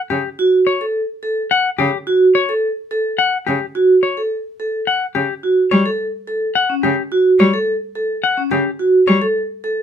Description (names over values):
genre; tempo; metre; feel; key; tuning
classical, minimalist pattern music; 107 BPM; 3/4; straight; unclear; A4 = 440 Hz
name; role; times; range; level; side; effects
semi-hollow electric guitar; melody; 0.1-9.3 s; G4 to F#5; -17 LUFS; left 6 dB; none
bright cello; accompaniment; 0.1-9.2 s; C#3 to G3; -17 LUFS; equal; none
vibraphone with hard mallets; arpeggios; 0.4-9.8 s; C#4 to A4; -16 LUFS; right 2 dB; none
room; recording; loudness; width
light reverb; minimal, uncompressed stereo recording; -14 LUFS; side -8 dB against mid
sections
0.0-9.8 A section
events
none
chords
0.0 C#sus4